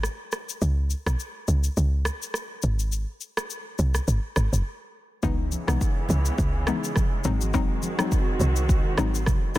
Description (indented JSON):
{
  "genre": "afrobeats",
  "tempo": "104 BPM",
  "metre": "4/4",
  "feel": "swing 55% on 16ths",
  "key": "unclear",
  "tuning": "A4 = 440 Hz",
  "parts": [
    { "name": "woody log drum bass", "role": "bass", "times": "0.0-9.3 s", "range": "F#1 to C#2", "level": "-23 LUFS", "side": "equal", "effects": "none" },
    { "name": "afro-pop drum kit", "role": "drums", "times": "0.0-9.6 s", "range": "kick drum, rim click, shaker", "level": "-26 LUFS", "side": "equal", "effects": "soft clipping on snare" },
    { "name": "hollow square pluck", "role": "accompaniment", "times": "5.2-9.6 s", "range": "E3 to D#4", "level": "-29 LUFS", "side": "left 6 dB", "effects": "chorus" },
    { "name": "muted studio string section", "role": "sustained chords", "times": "5.2-9.6 s", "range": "C#3 to F#4", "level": "-32 LUFS", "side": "right 2 dB", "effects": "none" },
    { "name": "congas", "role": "percussion", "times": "5.2-9.6 s", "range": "none", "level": "-34 LUFS", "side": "right 2 dB", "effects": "none" }
  ],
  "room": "digital ambience",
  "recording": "dense, heavily limited modern master",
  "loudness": "-23 LUFS",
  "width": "side -16 dB against mid",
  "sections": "0.0-9.6 A section",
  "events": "break 0.0-5.2",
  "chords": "0.0 N.C.; 2.6 G#; 5.2 C#m7; 7.3 G#7"
}